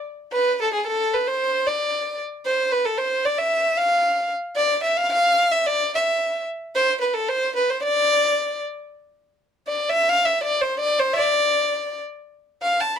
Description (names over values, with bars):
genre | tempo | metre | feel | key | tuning
klezmer | 112 BPM | 2/4 | straight | unclear | A4 = 442 Hz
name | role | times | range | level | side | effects
warm violin | solo | 0.3-13.0 s | G#4 to A5 | -19 LUFS | equal | none
room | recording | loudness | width
light reverb | close, detailed microphones | -19 LUFS | side -8 dB against mid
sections
0.3-8.9 A section; 8.9-13.0 B section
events
violin solo 8.9-13.0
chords
none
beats
| 0.30 0.83 | 1.37 1.90 | 2.44 2.97 | 3.51 4.04 | 4.58 5.11 | 5.65 6.18 | 6.72 7.25 | 7.79 8.33 | 8.86 9.40 | 9.94 10.47 | 11.01 11.54 | 12.08 12.62